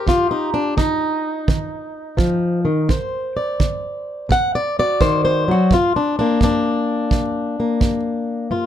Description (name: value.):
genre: acoustic country blues, solo or duo.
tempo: 85 BPM.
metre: 4/4.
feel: swing 66% on 8ths.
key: G minor.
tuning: A4 = 440 Hz.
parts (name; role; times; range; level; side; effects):
fingerpicked plugged-in swing-style acoustic guitar; melody; 0.0-8.7 s; G2 to F#5; -18 LUFS; left 1 dB; none.
kick drum; drums; 0.1-8.0 s; none; -20 LUFS; right 2 dB; none.
room: light reverb.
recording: none.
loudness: -17 LUFS.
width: side -10 dB against mid.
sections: 0.0-8.5 A section.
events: none.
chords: 0.0 Eb; 2.9 D7; 5.7 Gm.